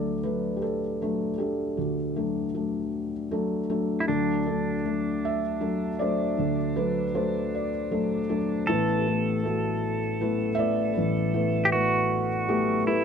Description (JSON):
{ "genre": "acoustic folk-pop ballad", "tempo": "52 BPM (dotted quarters)", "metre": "6/8", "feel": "straight", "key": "unclear", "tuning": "A4 = 441 Hz", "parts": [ { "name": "felt-muted upright piano", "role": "melody", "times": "0.0-13.0 s", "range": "A1 to E5", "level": "-25 LUFS", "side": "left 1 dB", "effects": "none" }, { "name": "pedal steel guitar", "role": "second line", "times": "4.0-13.0 s", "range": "D4 to A4", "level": "-30 LUFS", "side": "right 3 dB", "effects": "none" } ], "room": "little or no reverb", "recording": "close, detailed microphones", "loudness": "-24 LUFS", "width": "side -7 dB against mid", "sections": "0.0-4.1 A section; 4.1-13.0 B section", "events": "none", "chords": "0.0 D; 8.7 Asus2", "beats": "0.63 | 1.78 2.93 | 4.08 5.23 | 6.38 7.52 | 8.67 9.81 | 10.96 12.10" }